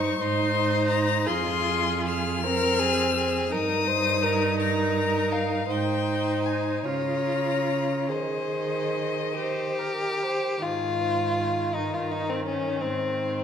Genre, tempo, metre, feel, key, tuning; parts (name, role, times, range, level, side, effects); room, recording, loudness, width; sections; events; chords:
classical, slow romantic movement for string quartet; 46-60 BPM (dotted quarters); 6/8; rubato; Ab major; A4 = 440 Hz
rich violin; melody; 0.0-13.4 s; Ab4 to F6; -30 LUFS; left 9 dB
rich violin; second line; 0.0-13.4 s; C4 to Db5; -27 LUFS; left 3 dB
rich viola; accompaniment; 0.0-13.4 s; Eb3 to C5; -29 LUFS; right 2 dB
warm cello; bass; 0.0-13.4 s; F2 to Eb3; -31 LUFS; right 5 dB
wet recital hall reverb, RT60 1.5 s; -23 LUFS; side -8 dB against mid
0.0-10.6 A section; 10.6-13.4 B section
0.2 Ab; 1.3 Fm; 3.5 Eb/G; 5.7 Ab; 6.9 Bbm/Db; 8.1 Ab/Eb; 9.4 Eb; 10.6 Ab5; 11.8 Eb/G; 12.8 Ab